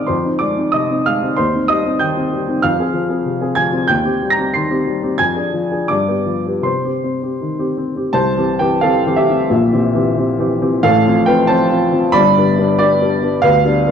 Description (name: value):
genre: classical, romantic character piece for solo piano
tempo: 77-97 BPM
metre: 2/4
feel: rubato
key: C minor, C major from 8.2 s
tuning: A4 = 439 Hz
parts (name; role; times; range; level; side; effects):
- warm upright piano; solo; 0.0-13.9 s; G1 to C7; -13 LUFS; equal; none
room: wet recital hall reverb, RT60 1.6 s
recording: dark, warm production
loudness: -13 LUFS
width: side -7 dB against mid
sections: 0.0-8.2 A section; 8.2-13.9 B section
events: none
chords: 0.1 Fm7; 1.4 Cm/Eb; 2.6 Fm; 3.9 Cm/Eb; 5.2 Ddim/F; 5.9 G7; 6.7 Cm; 8.2 C; 9.5 C7/Bb; 10.9 F/A; 12.2 G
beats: | 0.10 0.74 | 1.39 2.02 | 2.64 3.26 | 3.90 4.56 | 5.21 5.91 | 6.66 7.42 | 8.15 8.85 | 9.53 10.18 | 10.85 11.51 | 12.16 12.81 | 13.44